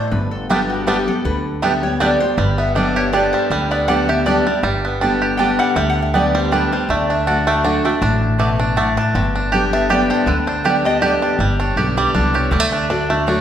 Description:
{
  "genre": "bluegrass",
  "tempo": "160 BPM",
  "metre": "3/4",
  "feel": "swing 54% on 8ths",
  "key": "G major",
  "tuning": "A4 = 440 Hz",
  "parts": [
    { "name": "lap resonator guitar", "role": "second line", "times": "0.0-11.1 s", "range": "F#4 to A5", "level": "-22 LUFS", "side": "left 1 dB", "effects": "none" },
    { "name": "picked steel-string acoustic guitar", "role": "accompaniment", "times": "0.0-13.4 s", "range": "G2 to G4", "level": "-20 LUFS", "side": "left 2 dB", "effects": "none" },
    { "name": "upright bass", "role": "bass", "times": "0.1-13.4 s", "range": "G1 to D2", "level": "-22 LUFS", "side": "equal", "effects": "none" },
    { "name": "bluegrass banjo", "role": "melody", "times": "0.5-13.4 s", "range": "D3 to G4", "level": "-20 LUFS", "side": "right 1 dB", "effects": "none" },
    { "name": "mandolin", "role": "stabs", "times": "0.5-13.4 s", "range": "A3 to A5", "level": "-23 LUFS", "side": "right 4 dB", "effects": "none" }
  ],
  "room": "wet recital hall reverb, RT60 1.5 s",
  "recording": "recorded in a church or concert hall",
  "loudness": "-15 LUFS",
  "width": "side -9 dB against mid",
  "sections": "0.0-2.4 A section; 2.4-11.4 A section; 11.4-13.4 A section",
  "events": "resonator guitar played with a steel bar solo 0.0-11.4",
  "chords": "0.1 G; 2.4 Gadd9; 6.9 D; 9.1 G; 12.5 D"
}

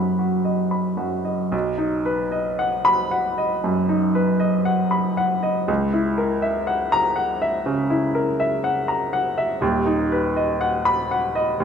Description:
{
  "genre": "classical, romantic character piece for solo piano",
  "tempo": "56-62 BPM",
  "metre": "4/4",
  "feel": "rubato",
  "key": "B major",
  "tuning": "A4 = 440 Hz",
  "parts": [
    { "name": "clear upright piano", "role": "solo", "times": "0.0-11.6 s", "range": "D#1 to B5", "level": "-19 LUFS", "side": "equal", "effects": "none" }
  ],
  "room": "moderate scoring stage reverb, RT60 1.8 s",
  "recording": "close, detailed microphones",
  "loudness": "-19 LUFS",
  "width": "side -7 dB against mid",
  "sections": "0.0-1.5 A section; 1.5-11.6 B section",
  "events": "none",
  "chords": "0.0 B; 5.7 F#7/C#; 9.6 B/D#"
}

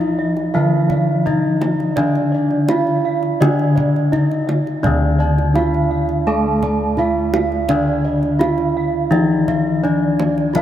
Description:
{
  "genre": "Javanese gamelan",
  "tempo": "84 BPM",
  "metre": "4/4",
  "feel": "straight",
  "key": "unclear",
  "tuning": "A4 = 437 Hz",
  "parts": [
    { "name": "gamelan-type bronze metallophone", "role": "melody", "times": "0.0-10.6 s", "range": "D4 to A4-30c", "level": "-20 LUFS", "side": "equal", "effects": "none" },
    { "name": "gamelan-type bronze metallophone", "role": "accompaniment", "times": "0.0-10.6 s", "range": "D3 to A3-30c", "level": "-21 LUFS", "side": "left 1 dB", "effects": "none" },
    { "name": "gamelan-type bossed gongs", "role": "arpeggios", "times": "0.0-10.6 s", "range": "D5 to A5-30c", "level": "-27 LUFS", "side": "left 2 dB", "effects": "none" },
    { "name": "gamelan-type bronze metallophone", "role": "arpeggios", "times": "0.0-10.6 s", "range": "D5 to A5-30c", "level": "-24 LUFS", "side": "right 4 dB", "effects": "none" },
    { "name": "gamelan-type bossed gongs", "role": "bass", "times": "0.0-10.6 s", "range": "D2 to F4-30c", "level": "-20 LUFS", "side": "equal", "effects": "none" },
    { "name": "kendang", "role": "percussion", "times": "0.0-10.6 s", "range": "none", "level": "-26 LUFS", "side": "right 2 dB", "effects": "none" }
  ],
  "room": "wet cathedral reverb, RT60 4.9 s",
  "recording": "in a vast, echoing space",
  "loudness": "-15 LUFS",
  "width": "side -11 dB against mid",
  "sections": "0.0-4.8 A section; 4.8-10.6 A section",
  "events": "none",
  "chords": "none"
}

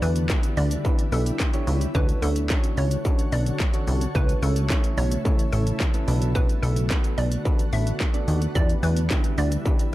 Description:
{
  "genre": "dance-pop",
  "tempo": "109 BPM",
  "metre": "4/4",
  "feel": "straight",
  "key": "unclear",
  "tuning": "A4 = 440 Hz",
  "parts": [
    { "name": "hollow square pluck", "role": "melody", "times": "0.0-9.5 s", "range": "A4 to E5", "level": "-33 LUFS", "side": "right 2 dB", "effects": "chorus, sidechain pumping, dub echo" },
    { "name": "soft electric-piano-like synth keys", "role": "accompaniment", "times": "0.0-9.8 s", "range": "A3 to D5", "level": "-33 LUFS", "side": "right 2 dB", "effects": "chorus, sidechain pumping" },
    { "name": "shimmering ambient pad", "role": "sustained chords", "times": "0.0-9.9 s", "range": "C#3 to C#5", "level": "-32 LUFS", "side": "equal", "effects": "chorus, built-in reverb, sidechain pumping" },
    { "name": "plucky analog bass", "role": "bass", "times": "0.0-9.6 s", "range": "A1 to E2", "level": "-22 LUFS", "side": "equal", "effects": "sidechain pumping" },
    { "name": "industrial drum kit", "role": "drums", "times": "0.0-9.9 s", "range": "handclaps, hi-hat, kick drum, shaker, snare drum", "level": "-24 LUFS", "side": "equal", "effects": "distortion" }
  ],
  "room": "digital ambience",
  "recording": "dark, warm production, faint mains hum",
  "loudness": "-20 LUFS",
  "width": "side -16 dB against mid",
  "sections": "0.0-9.9 A section",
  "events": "none",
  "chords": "0.0 Em7; 1.9 Dmaj7; 4.2 A; 6.1 Bm7; 8.6 Em7"
}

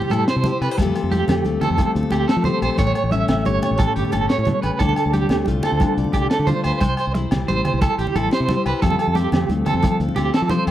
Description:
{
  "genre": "highlife guitar band",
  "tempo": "119 BPM (dotted quarters)",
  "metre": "12/8",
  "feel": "straight",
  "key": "unclear",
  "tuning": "A4 = 439 Hz",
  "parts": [
    { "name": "picked steel-string acoustic guitar", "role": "accompaniment", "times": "0.0-10.7 s", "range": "A2 to D5", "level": "-24 LUFS", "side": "left 6 dB", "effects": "none" },
    { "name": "electric guitar at the edge of break-up", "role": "arpeggios", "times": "0.0-10.7 s", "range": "G4 to E5", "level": "-23 LUFS", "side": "right 5 dB", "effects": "tremolo, tape echo" },
    { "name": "congas", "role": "percussion", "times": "0.0-10.7 s", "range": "none", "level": "-24 LUFS", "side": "right 1 dB", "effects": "none" },
    { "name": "fingered electric bass", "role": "bass", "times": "0.1-10.7 s", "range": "G1 to F3", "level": "-23 LUFS", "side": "equal", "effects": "none" },
    { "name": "crunchy breakbeat drum kit", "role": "drums", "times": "0.1-10.7 s", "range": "hi-hat, kick drum, snare drum", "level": "-22 LUFS", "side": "equal", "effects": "none" },
    { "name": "agogo bells", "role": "percussion", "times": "0.1-10.7 s", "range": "none", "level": "-31 LUFS", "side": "left 4 dB", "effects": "none" }
  ],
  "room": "little or no reverb",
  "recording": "dry, close 1970s-style studio recording",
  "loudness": "-17 LUFS",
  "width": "side -12 dB against mid",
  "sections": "0.0-10.7 A section",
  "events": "none",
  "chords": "0.0 C; 0.8 Fadd9; 2.8 A7; 4.8 Dm7; 6.8 C; 8.8 Fadd9"
}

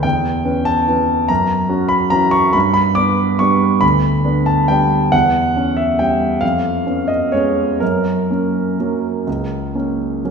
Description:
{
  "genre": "classical, piano waltz",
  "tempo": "120-154 BPM",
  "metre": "3/4",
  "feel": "rubato",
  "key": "unclear",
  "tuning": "A4 = 440 Hz",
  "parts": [
    { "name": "warm concert grand piano", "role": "solo", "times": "0.0-10.3 s", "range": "C#2 to D6", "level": "-14 LUFS", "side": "equal", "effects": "none" }
  ],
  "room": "wet recital hall reverb, RT60 1.6 s",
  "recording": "recorded in a church or concert hall",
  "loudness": "-14 LUFS",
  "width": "side -6 dB against mid",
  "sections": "0.0-10.3 A section",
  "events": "none",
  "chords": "0.0 C#m7b5/E; 1.3 F#7; 2.5 G; 5.1 C#dim/E; 6.4 C#7/E#; 7.8 F#"
}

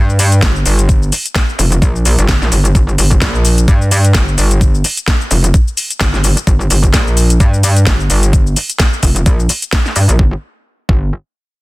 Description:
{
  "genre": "bass house",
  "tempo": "129 BPM",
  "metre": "4/4",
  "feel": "swing 57% on 16ths",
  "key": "G minor",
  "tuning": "A4 = 441 Hz",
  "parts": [
    { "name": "metallic wobble bass", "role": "bass", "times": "0.0-11.1 s", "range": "F1 to G2", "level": "-12 LUFS", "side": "equal", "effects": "chorus, overdrive, sidechain pumping" },
    { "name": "garage drum kit", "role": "drums", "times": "0.1-10.2 s", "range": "cabasa, hi-hat, snare drum", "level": "-16 LUFS", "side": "left 1 dB", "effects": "none" },
    { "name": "electronic kick drum", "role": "drums", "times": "0.4-11.0 s", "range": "none", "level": "-12 LUFS", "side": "equal", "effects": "none" }
  ],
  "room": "digital ambience",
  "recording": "dense, heavily limited modern master",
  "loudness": "-10 LUFS",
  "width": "side -20 dB against mid",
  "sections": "0.0-10.2 A section; 10.2-11.6 B section",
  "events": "none",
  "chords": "none"
}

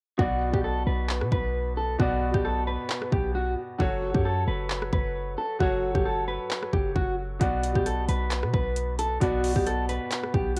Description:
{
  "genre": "hip hop, trap",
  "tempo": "133 BPM",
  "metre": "4/4",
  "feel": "half-time",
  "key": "B minor",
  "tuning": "A4 = 441 Hz",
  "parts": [
    { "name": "mellow electric guitar", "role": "melody", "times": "0.2-10.6 s", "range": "F#4 to B4", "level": "-32 LUFS", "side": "equal", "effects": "phaser, cassette tape, tape echo" },
    { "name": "bright grand piano", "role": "accompaniment", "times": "0.2-10.6 s", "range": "B2 to D5", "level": "-34 LUFS", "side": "equal", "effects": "cassette tape" },
    { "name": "warm 808-style bass", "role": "bass", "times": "0.2-10.6 s", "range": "F#1 to B2", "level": "-31 LUFS", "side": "equal", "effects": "none" },
    { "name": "trap drum kit", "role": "drums", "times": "0.2-10.6 s", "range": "handclaps, hi-hat, kick drum, rim click", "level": "-32 LUFS", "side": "equal", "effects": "cassette tape" }
  ],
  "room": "little or no reverb",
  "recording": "home recording on cassette",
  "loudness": "-27 LUFS",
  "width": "mono",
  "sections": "0.2-10.6 A section",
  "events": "hi-hats muted 0.2-7.4",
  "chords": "0.2 Bm; 3.8 F#m; 7.4 Bm"
}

